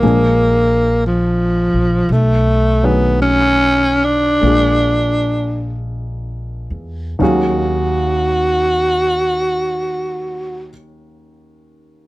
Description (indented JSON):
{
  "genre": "jazz ballad",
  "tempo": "39-61 BPM",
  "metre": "4/4",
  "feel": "swing 67% on 8ths",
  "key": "Eb minor",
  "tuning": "A4 = 440 Hz",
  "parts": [
    { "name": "growling tenor saxophone", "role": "melody", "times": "0.0-10.7 s", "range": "F3 to Gb4", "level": "-15 LUFS", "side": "equal", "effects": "none" },
    { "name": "dark baby grand piano", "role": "accompaniment", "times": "0.0-12.1 s", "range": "Eb2 to F5", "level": "-21 LUFS", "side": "equal", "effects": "none" },
    { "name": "upright bass", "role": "bass", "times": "0.0-10.7 s", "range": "Bb1 to Fb2", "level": "-19 LUFS", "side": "equal", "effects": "none" }
  ],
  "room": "little or no reverb",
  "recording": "close, detailed microphones",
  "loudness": "-13 LUFS",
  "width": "side -18 dB against mid",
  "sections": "0.0-7.2 A section; 7.2-12.1 B section",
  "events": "slowing down 0.0-7.2",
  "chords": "0.0 Bb7; 2.1 B13; 4.4 Bb7; 7.2 Ebm11",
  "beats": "0.03 1.04 | 2.10 3.22 4.43 5.74 | 7.20 8.73 10.25 11.76"
}